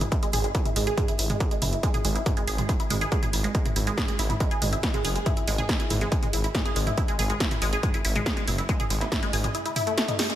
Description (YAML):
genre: driving peak-time techno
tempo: 140 BPM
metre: 4/4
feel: straight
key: unclear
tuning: A4 = 439 Hz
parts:
  - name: resonant blip pluck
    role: riff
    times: 0.0-10.4 s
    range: G#3 to G#4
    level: -29 LUFS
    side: equal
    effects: phaser, tube saturation, sidechain pumping, tape echo
  - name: detuned saw bass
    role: bass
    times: 0.0-9.5 s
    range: F#1 to G#1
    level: -27 LUFS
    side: equal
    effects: sidechain pumping
  - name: punchy analog drum machine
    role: drums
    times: 0.0-10.4 s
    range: hi-hat, snare drum, toms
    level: -29 LUFS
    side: right 1 dB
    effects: overdrive
  - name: electronic kick drum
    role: drums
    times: 0.1-9.2 s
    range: none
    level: -26 LUFS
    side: equal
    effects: distortion, overdrive
room: light reverb, digital ambience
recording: none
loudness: -23 LUFS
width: side -12 dB against mid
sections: 0.0-10.4 A section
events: drum fill 10.2; band accent 10.2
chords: none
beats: | 0.12 0.55 0.98 1.40 | 1.83 2.26 2.69 3.12 | 3.55 3.98 4.40 4.83 | 5.26 5.69 6.12 6.55 | 6.98 7.40 7.83 8.26 | 8.69 9.12 9.55 9.98